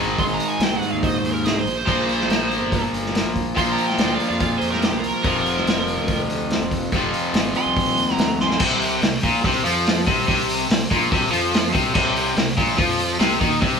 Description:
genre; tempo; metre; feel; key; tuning
blues rock power trio and southern rock; 143 BPM; 4/4; straight; unclear; A4 = 438 Hz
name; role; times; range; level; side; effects
crunchy overdriven guitar; riff; 0.0-13.8 s; F2 to C4; -21 LUFS; left 1 dB; none
fuzz fingered electric bass; bass; 0.0-13.8 s; F1 to F2; -29 LUFS; equal; overdrive
bluesy overdriven lead guitar; melody; 0.2-8.6 s; G4 to C6; -24 LUFS; right 3 dB; wah, distortion
vintage drum kit; drums; 0.2-13.7 s; crash cymbal, hi-hat, kick drum, snare drum; -22 LUFS; equal; none
lightly driven lead guitar; second line; 1.0-8.6 s; D4 to Ab5; -32 LUFS; right 7 dB; none
room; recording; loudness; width
moderate large studio reverb, RT60 1.2 s; band playing live in one room; -18 LUFS; side -6 dB against mid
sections
0.0-8.6 A section; 8.6-13.8 B section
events
drum fill 8.4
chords
0.0 Ab; 1.9 Bb5; 5.2 Fm; 8.6 N.C.

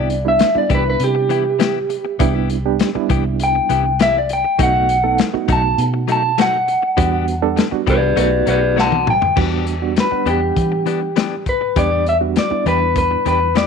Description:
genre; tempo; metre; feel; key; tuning
straight-eighth soul blues; 100 BPM; 4/4; straight; E minor; A4 = 443 Hz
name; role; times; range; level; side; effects
electric guitar through a small old amp; melody; 0.0-13.7 s; G4 to A5; -17 LUFS; left 1 dB; none
bright reed electric piano; accompaniment; 0.0-13.5 s; G3 to F#5; -22 LUFS; right 16 dB; fast tremolo
direct-recorded clean electric guitar; stabs; 0.0-13.7 s; E3 to G4; -24 LUFS; left 13 dB; none
vintage muted fingered electric bass; bass; 0.0-13.7 s; B1 to E3; -22 LUFS; right 1 dB; none
crunchy breakbeat drum kit; drums; 0.1-13.7 s; crash cymbal, hi-hat, kick drum, snare drum, toms; -21 LUFS; left 4 dB; none
room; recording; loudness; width
small room ambience; 1960s-style stereo with parts hard left and right; -14 LUFS; side -6 dB against mid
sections
0.0-9.4 A section; 9.4-13.7 B section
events
clean electric guitar solo 0.0-9.4; drum fill 8.8-9.4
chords
0.0 Cmaj7; 4.6 B7; 7.0 Em7; 8.2 B7; 9.4 Em7

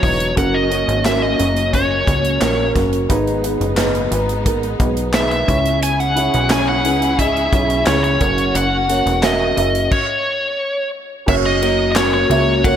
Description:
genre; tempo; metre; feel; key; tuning
piano-driven pop; 88 BPM; 4/4; straight; unclear; A4 = 439 Hz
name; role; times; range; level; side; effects
biting lead guitar; melody; 0.0-12.8 s; C#5 to G#5; -19 LUFS; equal; overdrive
felt-muted upright piano; accompaniment; 0.0-12.8 s; G#2 to E5; -19 LUFS; right 1 dB; lush chorus
warm studio string section; sustained chords; 0.0-12.8 s; C#3 to G#4; -27 LUFS; left 4 dB; none
plucky analog bass; bass; 0.0-12.8 s; E1 to C#2; -21 LUFS; equal; none
modern studio drum kit; drums; 0.0-12.8 s; crash cymbal, handclaps, hi-hat, kick drum, ride cymbal, snare drum; -21 LUFS; equal; gated reverb
group handclap; percussion; 12.0-12.1 s; none; barely audible; none; none
room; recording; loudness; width
light reverb, small room ambience; bright 1980s-style digital production; -14 LUFS; side -9 dB against mid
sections
0.0-11.3 A section; 11.3-12.8 B section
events
stop 9.9-11.3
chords
0.4 F#; 3.1 G#m; 5.5 C#m; 8.2 F#

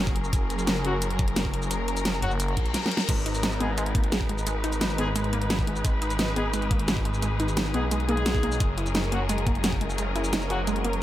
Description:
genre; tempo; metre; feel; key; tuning
dark technical drum and bass; 174 BPM; 4/4; straight; G# minor; A4 = 439 Hz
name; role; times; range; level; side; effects
muted studio string section; sustained chords; 0.0-11.0 s; F#3 to B4; -32 LUFS; left 2 dB; sidechain pumping
phased detuned saw bass; bass; 0.0-11.0 s; F#1 to B1; -28 LUFS; equal; phaser, tube saturation
dubstep drum kit; drums; 0.1-11.0 s; crash cymbal, hi-hat, shaker, snare drum; -29 LUFS; equal; none
electronic kick drum; drums; 0.1-9.8 s; none; -26 LUFS; equal; none
mellow brass ensemble; stabs; 0.8-10.6 s; F#3 to G#4; -32 LUFS; left 2 dB; digital delay
growling FM bass; bass; 2.2-2.6 s; F#1; -27 LUFS; equal; none
reverse cymbal; sound effects; 2.5-3.1 s; none; -35 LUFS; left 6 dB; none
warbly dusty pluck; arpeggios; 3.1-11.0 s; G#3 to G#4; -32 LUFS; right 1 dB; chorus, sidechain pumping, digital delay
room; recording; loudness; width
light reverb, digital ambience; none; -23 LUFS; side -13 dB against mid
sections
0.0-11.0 A section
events
reverse cymbal 2.5-3.1; drum fill 2.7-3.1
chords
0.0 F#; 3.1 G#madd9; 8.6 F#

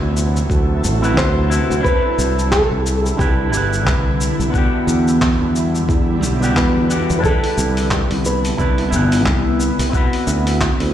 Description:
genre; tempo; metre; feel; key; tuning
sunset chillout; 89 BPM; 4/4; swing 58% on 16ths; C lydian; A4 = 440 Hz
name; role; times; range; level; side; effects
electric guitar with an envelope filter; accompaniment; 0.0-10.9 s; B3 to B4; -22 LUFS; moving between left 4 dB and right 4 dB; auto-pan, tape echo, shimmer reverb
shimmering ambient pad; sustained chords; 0.0-10.9 s; C3 to B4; -23 LUFS; equal; chorus, built-in reverb, phaser, shimmer reverb
modern bright fingered electric bass; bass; 0.0-10.9 s; G1 to E2; -18 LUFS; equal; none
dusty soul sampler-style drum kit; drums; 0.2-10.9 s; handclaps, hi-hat, shaker; -25 LUFS; left 1 dB; none
electronic kick drum; drums; 0.5-10.8 s; none; -19 LUFS; equal; none
nylon-string guitar; melody; 1.2-8.9 s; G4 to C5; -23 LUFS; equal; ping-pong delay, shimmer reverb
room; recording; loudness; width
light reverb; played on a big sound system in a bare room, large studio reverb; -14 LUFS; side -10 dB against mid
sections
0.0-10.9 A section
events
none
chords
0.0 D13; 1.8 Cmaj9; 4.5 Em7; 7.2 Cmaj9; 9.9 D13

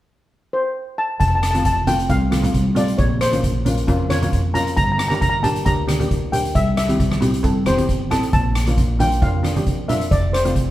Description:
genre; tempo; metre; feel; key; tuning
calypso; 135 BPM; 4/4; straight; F major; A4 = 439 Hz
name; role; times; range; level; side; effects
steel pan; melody; 0.5-10.7 s; C5 to Bb5; -22 LUFS; left 1 dB; none
upright bass; bass; 1.2-10.7 s; E1 to G2; -21 LUFS; equal; none
street-band drum kit; drums; 1.2-10.7 s; hi-hat, kick drum, rim click; -22 LUFS; equal; none
steel pan; accompaniment; 1.5-10.7 s; A3 to A4; -24 LUFS; equal; none
congas; percussion; 1.5-10.6 s; none; -24 LUFS; right 1 dB; none
room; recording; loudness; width
moderate plate reverb, RT60 1.1 s; heard from further back in the room; -16 LUFS; side -14 dB against mid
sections
0.0-1.2 A section; 1.2-10.7 B section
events
none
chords
0.0 N.C.; 1.2 F; 3.0 Bbm; 4.8 Gm; 6.5 C; 8.3 Bb; 10.1 F

